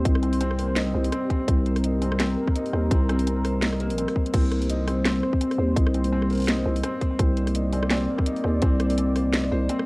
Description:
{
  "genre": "half-time drum and bass",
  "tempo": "168 BPM",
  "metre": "4/4",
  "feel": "swing 56% on 16ths, half-time",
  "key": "unclear",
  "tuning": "A4 = 440 Hz",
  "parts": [
    { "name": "dark analog pad", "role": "sustained chords", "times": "0.0-9.9 s", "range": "G3 to D5", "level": "-30 LUFS", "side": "right 1 dB", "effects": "chorus, sidechain pumping" },
    { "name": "felt-muted upright piano", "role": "arpeggios", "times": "0.0-9.9 s", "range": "Bb3 to C5", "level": "-27 LUFS", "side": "left 1 dB", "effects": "vintage 12-bit sampler grit, tape echo" },
    { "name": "growling 808-style bass", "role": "bass", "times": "0.0-9.7 s", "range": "Bb1 to Eb2", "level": "-24 LUFS", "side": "equal", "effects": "none" },
    { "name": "drum and bass drum kit", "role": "drums", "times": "0.1-9.9 s", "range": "crash cymbal, hi-hat, rim click, snare drum", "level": "-28 LUFS", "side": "equal", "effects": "overdrive, cassette tape" },
    { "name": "electronic kick drum", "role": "drums", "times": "0.1-8.7 s", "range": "none", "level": "-22 LUFS", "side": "equal", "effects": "overdrive, cassette tape" }
  ],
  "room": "light reverb",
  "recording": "home recording on cassette",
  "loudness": "-21 LUFS",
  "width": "side -25 dB against mid",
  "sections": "0.0-9.9 A section",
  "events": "none",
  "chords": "0.0 C5"
}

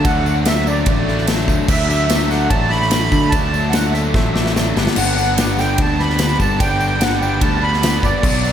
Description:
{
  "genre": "classic rock",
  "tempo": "146 BPM",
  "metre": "4/4",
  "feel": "straight",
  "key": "unclear",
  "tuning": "A4 = 440 Hz",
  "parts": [
    { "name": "accordion", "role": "melody", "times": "0.0-8.5 s", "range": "D5 to B5", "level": "-20 LUFS", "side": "right 2 dB", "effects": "light tremolo tuning, slapback echo" },
    { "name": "raw garage guitar", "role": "riff", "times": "0.0-8.5 s", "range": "G2 to D4", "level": "-20 LUFS", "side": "left 1 dB", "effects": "overdrive, slapback echo" },
    { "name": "growling picked electric bass", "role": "bass", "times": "0.0-8.5 s", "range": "G1 to D3", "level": "-20 LUFS", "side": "equal", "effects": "overdrive" },
    { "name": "big rock drum kit", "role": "drums", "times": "0.0-8.3 s", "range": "crash cymbal, kick drum, ride cymbal, snare drum", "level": "-19 LUFS", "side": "equal", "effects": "none" },
    { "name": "tambourine", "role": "percussion", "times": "0.1-8.5 s", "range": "none", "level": "-34 LUFS", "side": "right 10 dB", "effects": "none" }
  ],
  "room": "light reverb, small room ambience",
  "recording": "none",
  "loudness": "-14 LUFS",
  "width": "side -9 dB against mid",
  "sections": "0.0-8.5 A section",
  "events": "drum fill 4.1-5.0",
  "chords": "0.0 D; 4.8 G"
}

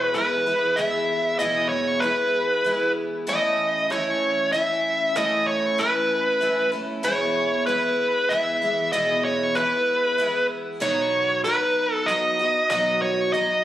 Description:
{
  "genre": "rock",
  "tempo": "96 BPM",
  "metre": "3/4",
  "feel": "straight",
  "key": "E major",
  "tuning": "A4 = 439 Hz",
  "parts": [
    { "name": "dark smooth lead guitar", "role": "melody", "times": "0.0-13.6 s", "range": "B4 to E5", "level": "-21 LUFS", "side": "equal", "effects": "overdrive, analog delay" },
    { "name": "picked twelve-string acoustic guitar", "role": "accompaniment", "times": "0.0-13.6 s", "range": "E2 to F#4", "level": "-27 LUFS", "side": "left 1 dB", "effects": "none" }
  ],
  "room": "moderate studio reverb, RT60 0.8 s",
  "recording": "recorded on a phone in the room, club reverb, compression",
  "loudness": "-20 LUFS",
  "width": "side -12 dB against mid",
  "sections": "0.0-13.6 A section",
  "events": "none",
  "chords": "0.0 E; 3.3 A; 7.1 E; 10.8 B"
}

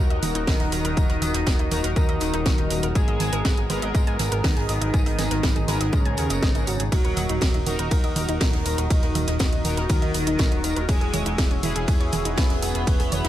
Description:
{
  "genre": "melodic techno",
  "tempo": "121 BPM",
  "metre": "4/4",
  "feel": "straight",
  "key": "Eb phrygian",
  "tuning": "A4 = 441 Hz",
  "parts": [
    { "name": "dark analog pad", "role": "sustained chords", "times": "0.0-13.3 s", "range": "Gb4 to Fb6", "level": "-36 LUFS", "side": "right 2 dB", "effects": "lush chorus, sidechain pumping" },
    { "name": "warbly dusty pluck", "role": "arpeggios", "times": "0.0-13.3 s", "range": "Db4 to Ab6", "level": "-33 LUFS", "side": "equal", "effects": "chorus, sidechain pumping, ping-pong delay" },
    { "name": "analog synth brass", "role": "stabs", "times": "0.0-13.3 s", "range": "Cb4 to Bb4", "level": "-31 LUFS", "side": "left 1 dB", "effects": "chorus, cassette tape, sidechain pumping, ping-pong delay" },
    { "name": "fat analog bass", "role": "bass", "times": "0.0-13.3 s", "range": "Eb1 to Ab2", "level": "-28 LUFS", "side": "equal", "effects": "sidechain pumping" },
    { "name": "analog drone", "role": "drone", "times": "0.0-13.3 s", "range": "Gb3 to Gb4", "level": "-38 LUFS", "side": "left 1 dB", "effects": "none" },
    { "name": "house drum kit", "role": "drums", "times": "0.1-13.3 s", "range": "congas, hi-hat, ride cymbal, snare drum", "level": "-29 LUFS", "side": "right 2 dB", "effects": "overdrive" },
    { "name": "jazz brush drum kit", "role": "drums", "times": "0.2-13.3 s", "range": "hi-hat, snare drum, tambourine", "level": "-37 LUFS", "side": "right 1 dB", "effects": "sidechain pumping on hats, high-pass filter on hats, high-pass filter on snare, sidechain pumping on perc, high-pass filter on perc, high-pass filter on room" },
    { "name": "fat analog lead", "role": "melody", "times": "0.5-13.3 s", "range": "Db4 to Cb5", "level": "-31 LUFS", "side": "equal", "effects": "sidechain pumping, ping-pong delay" },
    { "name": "airy dreamy lead", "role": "second line", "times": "0.5-13.3 s", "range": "Db3 to Cb4", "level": "-32 LUFS", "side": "equal", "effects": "chorus, sidechain pumping, ping-pong delay" },
    { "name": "electronic kick drum", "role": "drums", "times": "0.5-13.0 s", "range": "none", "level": "-22 LUFS", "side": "equal", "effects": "overdrive" }
  ],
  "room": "little or no reverb",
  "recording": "none",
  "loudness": "-20 LUFS",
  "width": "side -12 dB against mid",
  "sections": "0.0-13.3 A section",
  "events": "none",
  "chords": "0.0 Ebm; 3.0 Abmadd9; 6.9 Ebm; 10.9 Dbm/Fb"
}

